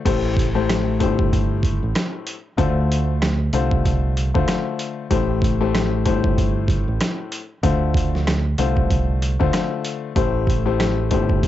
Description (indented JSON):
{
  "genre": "hip hop, boom-bap hip-hop",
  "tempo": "95 BPM",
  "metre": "4/4",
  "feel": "swing 60% on 16ths",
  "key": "A minor",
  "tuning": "A4 = 439 Hz",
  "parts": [
    { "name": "warm upright piano", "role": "accompaniment", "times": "0.1-11.5 s", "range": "A2 to C5", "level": "-23 LUFS", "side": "left 8 dB", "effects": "high-pass filter, low-pass filter, cassette tape" },
    { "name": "deep dub fingered electric bass", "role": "bass", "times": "0.1-11.5 s", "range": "G1 to D2", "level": "-21 LUFS", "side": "right 2 dB", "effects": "none" },
    { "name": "boom bap sampler-style drum kit", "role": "drums", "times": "0.1-11.5 s", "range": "crash cymbal, hi-hat, kick drum, rim click, snare drum", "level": "-22 LUFS", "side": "right 1 dB", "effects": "overdrive" }
  ],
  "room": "little or no reverb",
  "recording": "home recording on cassette, nothing above 7.7 kHz",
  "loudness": "-18 LUFS",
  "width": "side -13 dB against mid",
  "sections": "0.1-11.5 A section",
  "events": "none",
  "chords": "0.1 Am7; 2.6 Dm7; 5.1 Am7; 7.6 Dm7; 10.2 Am7"
}